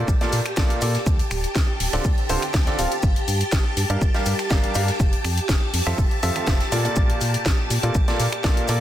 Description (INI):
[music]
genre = piano house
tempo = 122 BPM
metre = 4/4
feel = straight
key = unclear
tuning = A4 = 440 Hz
[part]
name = string machine, violins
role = sustained chords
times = 0.0-8.8 s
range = G4 to A5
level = -28 LUFS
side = equal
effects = ensemble chorus, sidechain pumping
[part]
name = bright upright piano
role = riff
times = 0.0-8.8 s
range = Bb2 to F5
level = -26 LUFS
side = right 1 dB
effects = sidechain pumping, dub echo
[part]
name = organ-like FM bass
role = bass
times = 0.0-8.8 s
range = D1 to Bb2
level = -24 LUFS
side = equal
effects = sidechain pumping
[part]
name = big rock drum kit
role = drums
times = 0.1-8.8 s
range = hi-hat, shaker, snare drum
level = -34 LUFS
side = right 1 dB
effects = sidechain pumping on hats, high-pass filter on hats, small room reverb, soft clipping on snare, high-pass filter on snare, sidechain pumping on perc, high-pass filter on perc, high-pass filter on room
[part]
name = electronic kick drum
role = drums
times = 0.1-8.5 s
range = none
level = -20 LUFS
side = equal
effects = overdrive, small room reverb
[part]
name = house drum kit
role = drums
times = 0.2-8.8 s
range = finger snaps, hi-hat, snare drum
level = -28 LUFS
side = left 2 dB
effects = overdrive, small room reverb
[sound]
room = small room reverb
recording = dense, heavily limited modern master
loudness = -19 LUFS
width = side -12 dB against mid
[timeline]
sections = 0.0-8.8 A section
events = none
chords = 0.0 Bbmaj7; 1.1 Dm7; 3.0 Gm7; 5.0 Fmaj7; 6.7 Bbmaj7